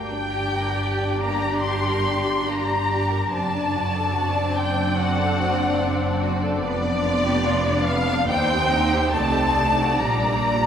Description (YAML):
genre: classical, slow romantic movement for string orchestra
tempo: 72 BPM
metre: 4/4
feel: rubato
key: G minor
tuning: A4 = 440 Hz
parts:
  - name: rich studio violin section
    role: melody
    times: 0.0-10.7 s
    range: D5 to C6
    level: -24 LUFS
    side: left 2 dB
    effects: none
  - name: clear studio violin section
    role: second line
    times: 0.0-10.7 s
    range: G3 to D5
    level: -27 LUFS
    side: left 1 dB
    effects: none
  - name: rich studio viola section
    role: accompaniment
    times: 0.0-10.7 s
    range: G3 to G4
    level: -27 LUFS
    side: right 1 dB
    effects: none
  - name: rich studio cello section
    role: bass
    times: 0.0-10.7 s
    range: Eb2 to C3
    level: -27 LUFS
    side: right 2 dB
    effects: none
  - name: rich studio double bass section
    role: bass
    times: 0.0-10.7 s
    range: F1 to Eb2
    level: -29 LUFS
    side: right 2 dB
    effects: none
room: wet church reverb, RT60 3.7 s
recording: recorded in a church or concert hall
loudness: -19 LUFS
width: side -8 dB against mid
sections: 0.0-10.7 A section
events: none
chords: 0.0 Gm; 3.3 D7/F#; 6.6 G7/F (rootless); 8.3 Cm/Eb; 9.2 D7/C; 10.0 Gm/Bb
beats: 0.79 1.65 2.48 | 3.33 4.17 4.99 5.82 | 6.64 7.46 8.29 9.15 | 10.04